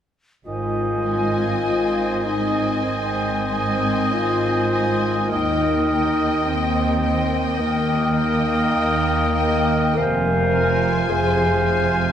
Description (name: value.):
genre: classical, slow romantic movement for symphony orchestra.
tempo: 45-55 BPM.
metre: 4/4.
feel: rubato.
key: Ab major.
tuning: A4 = 439 Hz.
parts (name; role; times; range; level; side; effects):
silver concert flute; second line; 0.5-12.1 s; G5 to Ab5; -30 LUFS; equal; none.
warm clarinet; second line; 0.5-12.1 s; Bb4 to C5; -29 LUFS; left 1 dB; none.
warm oboe; second line; 0.5-12.1 s; Eb5 to F5; -28 LUFS; right 1 dB; none.
clear bassoon; accompaniment; 0.5-12.1 s; C3 to Eb3; -29 LUFS; right 2 dB; none.
mellow French horn section; sustained chords; 0.5-12.0 s; Bb3 to Bb4; -23 LUFS; left 4 dB; none.
warm symphonic cello section; bass; 0.5-12.1 s; Eb2 to Ab2; -26 LUFS; right 3 dB; none.
warm symphonic double bass section; bass; 0.5-12.1 s; F1 to Eb2; -28 LUFS; right 4 dB; none.
warm studio violin section; melody; 1.1-12.1 s; G5 to Ab5; -29 LUFS; left 4 dB; none.
warm symphonic violin section; second line; 1.1-12.1 s; C5 to Eb5; -30 LUFS; left 2 dB; none.
dark symphonic viola section; accompaniment; 1.1-12.1 s; F3 to C4; -31 LUFS; right 1 dB; none.
room: wet concert hall reverb, RT60 1.8 s.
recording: none.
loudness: -18 LUFS.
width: side -9 dB against mid.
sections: 0.5-12.1 A section.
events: none.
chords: 0.5 Ab; 5.3 Eb; 10.0 Fm.